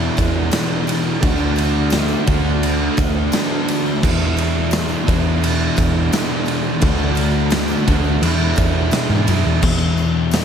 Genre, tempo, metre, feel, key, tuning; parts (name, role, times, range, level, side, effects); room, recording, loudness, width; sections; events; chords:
rock, shoegaze and dream pop; 86 BPM; 4/4; straight; E mixolydian; A4 = 439 Hz
overdriven electric guitar; riff; 0.0-9.6 s; E2 to F#4; -22 LUFS; right 11 dB; reverse reverb
thick fuzz guitar; riff; 0.0-10.4 s; E2 to D4; -22 LUFS; left 10 dB; distortion, wide subtle chorus
vintage muted picked electric bass; bass; 0.0-10.4 s; D2 to G#2; -20 LUFS; equal
raw garage drum kit; drums; 0.2-10.4 s; crash cymbal, hi-hat, kick drum, ride cymbal, snare drum; -20 LUFS; equal
tambourine; percussion; 0.2-10.4 s; -38 LUFS; left 10 dB
light reverb, small room ambience; -15 LUFS; side -8 dB against mid
0.0-9.6 A section
0.0 E7; 1.2 D; 4.0 E7; 6.8 D; 8.2 E7; 9.6 E5